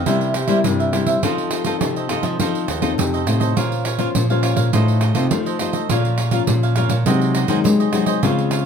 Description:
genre	samba and choro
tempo	103 BPM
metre	4/4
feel	straight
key	Bb minor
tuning	A4 = 440 Hz
part	cavaquinho	accompaniment	0.0-8.6 s	E4 to F5	-24 LUFS	right 7 dB	none
part	nylon-string guitar	accompaniment	0.0-8.7 s	G2 to C5	-21 LUFS	left 7 dB	none
part	nylon-string guitar	bass	0.0-8.7 s	Eb2 to Ab3	-20 LUFS	equal	none
part	pandeiro	percussion	0.1-8.7 s	none	-24 LUFS	right 4 dB	none
room	light reverb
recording	none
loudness	-16 LUFS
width	side -7 dB against mid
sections	0.0-8.7 A section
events	none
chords	0.1 C7; 1.2 F7; 3.6 Bbmadd9; 4.7 F7/A; 5.9 Bbm; 7.1 Ab7/C

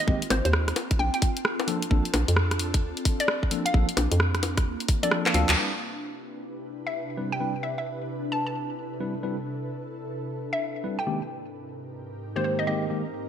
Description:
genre	UK garage, two-step garage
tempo	131 BPM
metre	4/4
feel	swing 64% on 16ths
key	C major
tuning	A4 = 440 Hz
part	hollow square pluck	melody	0.0-12.8 s	C5 to A5	-30 LUFS	equal	chorus, ping-pong delay
part	ethereal airy pad	sustained chords	0.0-13.3 s	Ab2 to B4	-34 LUFS	equal	ensemble chorus, built-in reverb, sidechain pumping
part	tine electric piano	stabs	0.1-13.0 s	Eb3 to B4	-30 LUFS	left 1 dB	medium stereo tremolo, low-pass filter, ping-pong delay
part	hollow knocking FM bass	bass	0.1-5.6 s	Ab1 to F2	-25 LUFS	equal	none
part	electronic kick drum	drums	0.1-5.0 s	none	-24 LUFS	equal	small room ambience
part	garage drum kit	drums	0.2-5.6 s	bongos, handclaps, hi-hat, rim click	-27 LUFS	left 1 dB	small room ambience
room	moderate plate reverb, RT60 1.9 s, digital ambience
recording	bright 1980s-style digital production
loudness	-24 LUFS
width	side -9 dB against mid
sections	0.0-5.6 A section; 5.6-13.3 B section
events	kick drops out 5.1-5.6; drum fill 5.2-5.6; band accent 5.5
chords	0.0 Abmaj9; 0.8 Bbmaj9; 5.6 Cmaj9; 11.1 Abmaj9

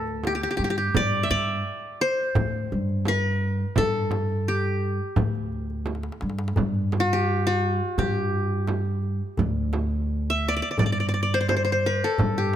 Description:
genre	Arabic maqam ensemble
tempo	85 BPM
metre	4/4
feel	straight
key	G maqam rast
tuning	A4 = 440 Hz
part	qanun	melody	0.0-12.6 s	F#4-50c to E5	-25 LUFS	left 1 dB	none
part	upright bass	bass	0.0-12.6 s	D2 to G2	-26 LUFS	right 1 dB	none
part	darbuka	percussion	0.1-12.6 s	none	-31 LUFS	left 4 dB	none
part	frame drum	percussion	0.2-12.4 s	none	-29 LUFS	right 4 dB	none
room	light reverb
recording	close, detailed microphones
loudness	-22 LUFS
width	side -10 dB against mid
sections	0.0-6.6 A section; 6.6-12.6 B section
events	drum fill 5.9-6.6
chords	none

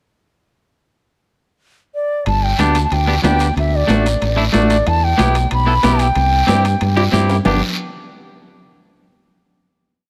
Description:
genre	latin, cumbia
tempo	185 BPM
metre	4/4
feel	straight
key	G major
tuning	A4 = 439 Hz
part	bright reedy bansuri	melody	1.9-7.1 s	D5 to B5	-21 LUFS	equal	none
part	fingered electric bass	bass	2.3-7.6 s	G1 to G2	-19 LUFS	equal	none
part	congas	percussion	2.3-7.5 s	none	-24 LUFS	equal	none
part	guiro	percussion	2.3-7.5 s	none	-30 LUFS	equal	none
part	timbales	percussion	2.3-7.5 s	none	-29 LUFS	equal	none
part	electric guitar at the edge of break-up	accompaniment	2.6-7.6 s	A3 to A4	-22 LUFS	equal	none
room	light reverb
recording	none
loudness	-15 LUFS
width	mono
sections	1.0-2.3 pickup bar; 2.3-7.5 A section; 7.5-8.7 final chord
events	drum fill 7.0-7.5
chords	1.0 N.C.; 2.3 G; 3.6 D; 4.9 Em; 6.2 C; 7.5 G

